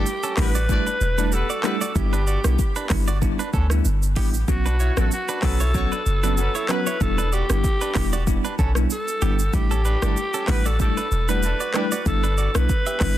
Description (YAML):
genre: afrobeats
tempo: 95 BPM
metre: 4/4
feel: swing 55% on 16ths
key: unclear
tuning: A4 = 440 Hz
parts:
  - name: growling alto saxophone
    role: melody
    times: 0.0-13.2 s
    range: F#4 to B4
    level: -27 LUFS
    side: equal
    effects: ping-pong delay
  - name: warm horn section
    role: second line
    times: 0.0-11.8 s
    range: E3 to D5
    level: -34 LUFS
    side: left 1 dB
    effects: none
  - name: bell-like tine electric piano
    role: accompaniment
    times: 0.0-13.2 s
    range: F#3 to F#4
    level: -28 LUFS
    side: left 1 dB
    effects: medium stereo tremolo
  - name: warm 808-style bass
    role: bass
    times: 0.0-13.2 s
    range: E1 to D2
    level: -22 LUFS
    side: equal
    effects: none
  - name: afro-pop drum kit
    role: drums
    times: 0.1-13.2 s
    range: handclaps, hi-hat, kick drum, rim click, shaker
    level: -25 LUFS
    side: equal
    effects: none
  - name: direct-recorded clean electric guitar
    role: riff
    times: 0.2-13.0 s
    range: B3 to E5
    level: -32 LUFS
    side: right 5 dB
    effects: spring reverb, ping-pong delay
room: little or no reverb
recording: dense, heavily limited modern master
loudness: -19 LUFS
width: side -13 dB against mid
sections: 0.0-13.2 A section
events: none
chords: 0.0 Em7; 2.0 G6; 4.5 Bsus2; 7.0 Em7; 12.1 G6